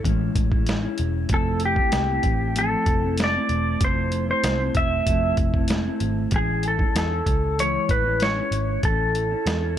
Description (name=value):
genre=indie pop, bedroom pop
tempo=96 BPM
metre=4/4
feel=straight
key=unclear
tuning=A4 = 440 Hz
part: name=mellow electric guitar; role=accompaniment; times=0.0-9.8 s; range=E3 to E4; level=-28 LUFS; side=left 2 dB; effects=wide subtle chorus, vibrato effect
part: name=vintage muted picked electric bass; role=bass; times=0.0-9.8 s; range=E1 to E2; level=-26 LUFS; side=equal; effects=none
part: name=boom bap sampler-style drum kit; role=drums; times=0.0-9.6 s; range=hi-hat, kick drum, snare drum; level=-25 LUFS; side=equal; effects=none
part: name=clean lap steel guitar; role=melody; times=1.3-9.8 s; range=G4 to E5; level=-24 LUFS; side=equal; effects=lush chorus
room=light reverb, digital ambience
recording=none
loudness=-20 LUFS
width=side -10 dB against mid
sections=0.0-9.8 A section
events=none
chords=0.0 Amaj7; 1.3 Fmaj7; 6.3 Amaj7